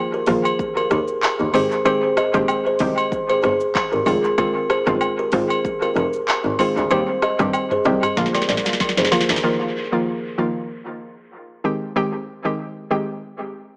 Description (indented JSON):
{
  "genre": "afrobeats",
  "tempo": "95 BPM",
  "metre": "4/4",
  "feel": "swing 55% on 16ths",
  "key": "Eb major",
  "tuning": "A4 = 440 Hz",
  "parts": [
    { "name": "hollow square pluck", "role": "accompaniment", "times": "0.0-13.2 s", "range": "D3 to G4", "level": "-26 LUFS", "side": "equal", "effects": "chorus, dub echo" },
    { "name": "kalimba", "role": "riff", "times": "0.1-9.2 s", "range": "F4 to Eb5", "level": "-24 LUFS", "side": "equal", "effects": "dub echo" },
    { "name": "clear double bass", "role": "bass", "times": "0.3-9.4 s", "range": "F1 to G2", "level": "-28 LUFS", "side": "equal", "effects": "none" },
    { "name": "afro-pop drum kit", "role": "drums", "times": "0.3-9.5 s", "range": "handclaps, hi-hat, kick drum, rim click, shaker, snare drum, toms", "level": "-27 LUFS", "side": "equal", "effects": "dub echo" },
    { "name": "agogo bells and woodblock", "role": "percussion", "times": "0.5-9.3 s", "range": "none", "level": "-28 LUFS", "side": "equal", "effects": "dub echo" }
  ],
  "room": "light reverb",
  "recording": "echo-heavy mix, small speaker sound",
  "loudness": "-20 LUFS",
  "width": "mono",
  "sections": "0.0-9.4 A section; 9.4-13.8 B section",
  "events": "drum fill 8.2-9.4",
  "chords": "0.0 Ebsus2; 1.5 Abmaj7; 4.1 Fm7; 6.9 Cm/Eb; 8.2 Bb; 9.4 Ebsus2; 11.6 Abmaj7"
}